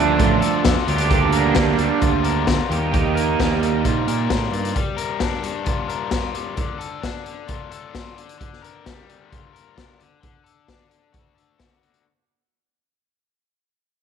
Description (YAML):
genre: indie rock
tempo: 132 BPM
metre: 4/4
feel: straight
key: G minor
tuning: A4 = 440 Hz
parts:
  - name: crunchy overdriven guitar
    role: riff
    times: 0.0-4.8 s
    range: F3 to G4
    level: -21 LUFS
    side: right 13 dB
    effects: analog chorus, slapback echo
  - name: raw garage guitar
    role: riff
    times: 0.0-12.0 s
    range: D3 to Bb4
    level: -26 LUFS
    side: left 8 dB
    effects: overdrive
  - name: growling picked electric bass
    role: bass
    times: 0.0-4.7 s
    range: A1 to Bb2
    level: -23 LUFS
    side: right 2 dB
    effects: overdrive
  - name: raw garage drum kit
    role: drums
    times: 0.2-12.0 s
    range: hi-hat, kick drum, snare drum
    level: -23 LUFS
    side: left 1 dB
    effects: none
room: light reverb, small room ambience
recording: 1960s-style stereo with parts hard left and right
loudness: -18 LUFS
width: side -7 dB against mid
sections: 0.0-12.0 A section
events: fade-out 0.0-12.0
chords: 0.0 Dm; 0.9 Gm7/D; 2.7 Ebadd9; 4.7 Gm7; 6.6 Dm; 8.2 Gm7/D; 10.0 D